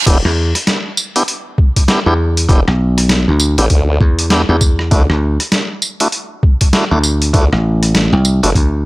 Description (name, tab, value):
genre	glitch hop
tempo	99 BPM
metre	4/4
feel	swing 61% on 16ths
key	E minor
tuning	A4 = 440 Hz
part	tonewheel organ	stabs	0.1-8.5 s	A3 to G4	-19 LUFS	equal	overdrive, sidechain pumping, tape echo
part	formant-sweep wobble bass	bass	0.1-8.5 s	E1 to D2	-14 LUFS	equal	chorus, tube saturation, high-pass filter
part	boom bap sampler-style drum kit	drums	0.1-8.7 s	crash cymbal, hi-hat, rim click, snare drum, tambourine	-16 LUFS	equal	overdrive, small room ambience
part	electronic kick drum	drums	0.1-8.7 s	none	-11 LUFS	equal	overdrive, small room ambience
part	dry thumbed slap bass	bass	0.2-8.9 s	A1 to E2	-13 LUFS	equal	tube saturation
room	digital ambience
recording	dry, gritty hardware recording, high-pass filter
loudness	-11 LUFS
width	side -21 dB against mid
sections	0.1-8.9 A section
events	drop 0.1-8.9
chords	0.1 Em7; 4.9 Dadd9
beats	| 0.06 0.67 1.27 1.88 | 2.49 3.09 3.70 4.30 | 4.91 5.52 6.12 6.73 | 7.34 7.94 8.55